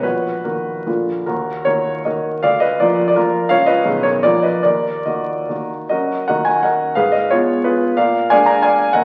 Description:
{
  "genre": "classical, romantic triple-time dance for piano with dotted rhythms",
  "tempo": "132-197 BPM",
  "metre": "3/4",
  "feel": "rubato",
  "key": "Eb minor",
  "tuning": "A4 = 440 Hz",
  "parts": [
    { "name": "warm concert grand piano", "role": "solo", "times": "0.0-9.0 s", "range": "Bb1 to Bb5", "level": "-17 LUFS", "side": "equal", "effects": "none" }
  ],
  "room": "wet recital hall reverb, RT60 1.4 s",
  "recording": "very old 78 rpm record, vinyl crackle",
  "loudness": "-17 LUFS",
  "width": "mono",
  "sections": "0.0-5.9 A section; 5.9-9.0 B section",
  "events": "none",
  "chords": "0.1 Ebm/Bb; 0.9 Bb; 1.3 Ebm; 2.4 Bb/D; 3.5 Bbm/Db; 3.9 Abm/Cb; 4.2 Bb; 4.6 Ebm; 5.9 Ebm/Gb; 7.0 Fdim/Ab; 8.0 Bb7"
}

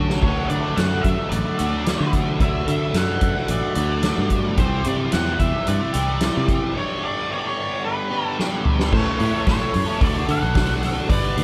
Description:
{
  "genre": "psychedelic rock",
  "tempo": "110 BPM",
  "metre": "4/4",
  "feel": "straight",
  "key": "unclear",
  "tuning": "A4 = 443 Hz",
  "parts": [
    { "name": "biting overdriven guitar", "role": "riff", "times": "0.0-11.4 s", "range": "G2 to B4", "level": "-27 LUFS", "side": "equal", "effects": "flanger" },
    { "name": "fingered electric bass", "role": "bass", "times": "0.0-11.4 s", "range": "G1 to D3", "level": "-26 LUFS", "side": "equal", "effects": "none" },
    { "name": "soft-mallet drum kit", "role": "drums", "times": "0.1-11.4 s", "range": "crash cymbal, hi-hat, kick drum, snare drum, toms", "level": "-25 LUFS", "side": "equal", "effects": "none" },
    { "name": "octave-fuzz lead guitar", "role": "melody", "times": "0.2-11.4 s", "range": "B4 to F#5", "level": "-29 LUFS", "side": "equal", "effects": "distortion, analog delay" }
  ],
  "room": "moderate cathedral reverb, RT60 6.2 s",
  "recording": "dreamy mix soaked in reverb",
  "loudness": "-21 LUFS",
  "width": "mono",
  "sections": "0.2-8.9 A section; 8.9-11.4 B section",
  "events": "drum fill 0.0, 8.4-8.9; break 6.8-8.9",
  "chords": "0.2 D; 4.6 Cadd9; 6.8 G; 8.9 A; 10.0 D6"
}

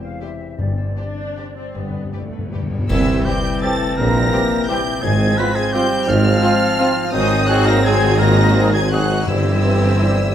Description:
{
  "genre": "classical, orchestral ballroom waltz",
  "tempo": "147-184 BPM",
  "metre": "3/4",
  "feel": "rubato",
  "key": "unclear",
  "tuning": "A4 = 441 Hz",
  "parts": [
    { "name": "flute section", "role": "second line", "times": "0.0-10.3 s", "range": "D5 to B5", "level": "-28 LUFS", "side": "left 1 dB", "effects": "none" },
    { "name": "concert harp", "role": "arpeggios", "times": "0.0-10.3 s", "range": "E2 to C6", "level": "-25 LUFS", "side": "left 6 dB", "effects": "none" },
    { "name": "rich studio violin section", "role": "melody", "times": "0.2-10.3 s", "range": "B4 to B6", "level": "-25 LUFS", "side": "right 1 dB", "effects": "none" },
    { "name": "warm symphonic violin section", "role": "second line", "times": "0.2-10.3 s", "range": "F4 to C5", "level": "-28 LUFS", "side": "left 2 dB", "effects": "none" },
    { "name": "warm symphonic viola section", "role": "accompaniment", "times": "0.2-10.3 s", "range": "G3 to Gb4", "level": "-26 LUFS", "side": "equal", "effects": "none" },
    { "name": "rich symphonic cello section", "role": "bass", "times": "0.6-10.3 s", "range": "G2 to C3", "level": "-23 LUFS", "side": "right 2 dB", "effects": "none" },
    { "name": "rich symphonic double bass section", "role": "bass", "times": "0.6-10.3 s", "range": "G1 to C2", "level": "-24 LUFS", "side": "right 2 dB", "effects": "none" },
    { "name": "cymbal swell, clash cymbals and concert bass drum", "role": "percussion", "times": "0.6-3.6 s", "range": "none", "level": "-29 LUFS", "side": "equal", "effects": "none" },
    { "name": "timpani", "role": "percussion", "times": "0.6-2.9, 9.3-9.8 s", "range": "G2", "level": "-25 LUFS", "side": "left 2 dB", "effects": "none" },
    { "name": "clear clarinet", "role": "second line", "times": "2.9-10.3 s", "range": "C4", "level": "-26 LUFS", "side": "equal", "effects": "none" },
    { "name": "warm oboe", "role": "second line", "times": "2.9-10.3 s", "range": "Eb4 to B4", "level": "-26 LUFS", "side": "right 1 dB", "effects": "none" },
    { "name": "dark bassoon", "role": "accompaniment", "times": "2.9-10.3 s", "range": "E3 to G3", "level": "-25 LUFS", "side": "right 2 dB", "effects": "none" },
    { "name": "dark French horn section", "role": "sustained chords", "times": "2.9-10.3 s", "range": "Eb3 to B3", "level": "-25 LUFS", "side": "left 5 dB", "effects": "none" },
    { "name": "warm tuba", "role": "bass", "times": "2.9-10.3 s", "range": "G1 to C2", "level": "-23 LUFS", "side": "right 3 dB", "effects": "none" },
    { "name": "warm trombone section", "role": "sustained chords", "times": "3.3-10.2 s", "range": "E3 to C4", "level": "-28 LUFS", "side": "right 3 dB", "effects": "none" },
    { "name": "dark trumpet section", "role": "stabs", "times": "3.3-10.2 s", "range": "F4 to Ab4", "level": "-29 LUFS", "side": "right 1 dB", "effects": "none" }
  ],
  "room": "moderate recital hall reverb, RT60 1.5 s",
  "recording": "none",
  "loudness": "-14 LUFS",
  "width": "side -10 dB against mid",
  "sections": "0.0-2.9 A section; 2.9-10.3 B section",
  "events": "timpani fill 1.8-2.9; band accent 2.9-3.3",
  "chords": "0.0 C/E; 0.6 Gsus4; 1.8 G; 2.9 C; 4.0 C7/Bb; 5.0 Fm/Ab; 7.1 Ab7; 9.3 C/G"
}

